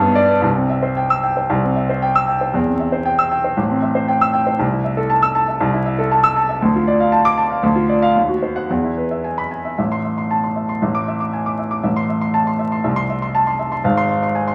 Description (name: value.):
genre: classical, virtuoso piano study.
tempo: 117 BPM.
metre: 2/4.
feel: rubato.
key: C major, A minor from 5.6 s.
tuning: A4 = 440 Hz.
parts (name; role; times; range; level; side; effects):
warm grand piano; solo; 0.0-14.5 s; Ab1 to E6; -18 LUFS; equal; none.
room: wet stone room reverb, RT60 1.3 s.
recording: vinyl crackle.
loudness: -18 LUFS.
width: mono.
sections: 0.0-1.5 A section; 1.5-9.8 B section; 9.8-14.5 A section.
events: none.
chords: 0.4 C; 2.5 C/E; 3.6 Am7; 4.6 Am/C; 6.6 Dm; 8.2 D#m6; 8.7 E; 9.8 Am; 10.8 E7/A; 11.8 Am; 12.8 Am/C; 13.8 Fm/Ab.